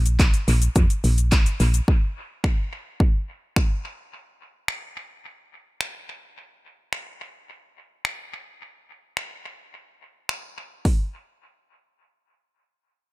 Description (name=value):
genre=dance-pop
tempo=107 BPM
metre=4/4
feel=straight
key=unclear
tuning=A4 = 441 Hz
part: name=solid FM bass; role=bass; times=0.0-1.8 s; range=Bb1 to F2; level=-19 LUFS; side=equal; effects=sidechain pumping
part: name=house drum kit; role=drums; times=0.1-11.0 s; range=finger snaps, handclaps, hi-hat, kick drum, shaker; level=-21 LUFS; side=equal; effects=dub echo
room=little or no reverb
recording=echo-heavy mix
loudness=-21 LUFS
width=side -20 dB against mid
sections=0.0-1.9 A section; 1.9-10.9 B section; 10.9-13.1 C section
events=none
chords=none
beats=0.20 0.76 1.32 | 1.88 2.44 3.00 3.56 | 4.12 4.68 5.24 5.80 | 6.37 6.93 7.49 8.05 | 8.61 9.17 9.73 10.29 | 10.85